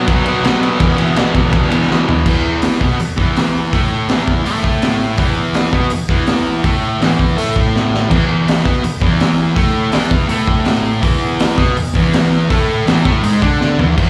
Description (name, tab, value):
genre	garage rock duo or trio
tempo	164 BPM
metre	4/4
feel	straight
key	unclear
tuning	A4 = 440 Hz
part	fuzz guitar	riff	0.0-14.1 s	E2 to D4	-17 LUFS	equal	distortion, slapback echo
part	crunchy breakbeat drum kit	drums	0.1-14.1 s	crash cymbal, hi-hat, kick drum, ride cymbal, snare drum, toms	-18 LUFS	equal	none
room	moderate club reverb, RT60 0.6 s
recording	live gig heard through the venue's PA, club reverb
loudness	-15 LUFS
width	mono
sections	0.0-2.3 A section; 2.3-14.0 B section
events	drum fill 1.9-2.3, 7.7-8.1, 13.6-14.0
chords	0.0 B5; 0.8 E5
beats	0.07 0.44 | 0.80 1.17 1.53 1.90 | 2.26 2.63 2.99 3.36 | 3.72 4.09 4.45 4.82 | 5.18 5.55 5.91 6.28 | 6.64 7.01 7.38 7.74 | 8.11 8.47 8.84 9.20 | 9.57 9.94 10.30 10.67 | 11.04 11.40 11.77 12.13 | 12.50 12.87 13.23 13.60 | 13.97